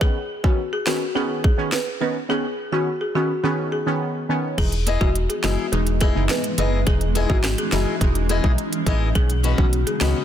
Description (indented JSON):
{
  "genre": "dancehall",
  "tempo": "105 BPM",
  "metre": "4/4",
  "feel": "straight",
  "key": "E major",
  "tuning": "A4 = 442 Hz",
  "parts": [
    { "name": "folk marimba with medium hard mallets", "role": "melody", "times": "0.0-10.1 s", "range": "F#4 to B4", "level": "-26 LUFS", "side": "left 2 dB", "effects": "tape echo" },
    { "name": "synth brass stab", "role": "accompaniment", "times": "0.0-10.2 s", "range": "D#3 to D#4", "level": "-26 LUFS", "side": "right 2 dB", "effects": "chorus, phaser" },
    { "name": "island pop drum kit", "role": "drums", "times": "0.0-10.1 s", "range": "crash cymbal, hi-hat, kick drum, rim click, snare drum", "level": "-22 LUFS", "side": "equal", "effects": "none" },
    { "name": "granular cloud pad", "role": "sustained chords", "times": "5.3-10.2 s", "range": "C#3 to D#4", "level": "-29 LUFS", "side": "left 1 dB", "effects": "built-in reverb, sidechain pumping" },
    { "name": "organ-like FM bass", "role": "bass", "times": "4.6-10.1 s", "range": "E1 to C#2", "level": "-22 LUFS", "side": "equal", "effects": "none" },
    { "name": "picked old ladder-braced acoustic guitar", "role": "arpeggios", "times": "4.9-10.2 s", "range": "B3 to D#5", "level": "-28 LUFS", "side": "left 8 dB", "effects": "none" }
  ],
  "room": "digital ambience",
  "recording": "dense, heavily limited modern master",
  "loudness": "-19 LUFS",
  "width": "side -10 dB against mid",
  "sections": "0.0-4.6 A section; 4.6-10.2 B section",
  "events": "none",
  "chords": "0.0 Badd9; 4.6 Emaj7; 9.2 Badd9",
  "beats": "| 0.01 0.58 1.15 1.73 | 2.30 2.87 3.44 4.01 | 4.58 5.15 5.72 6.30 | 6.87 7.44 8.01 8.58 | 9.15 9.72"
}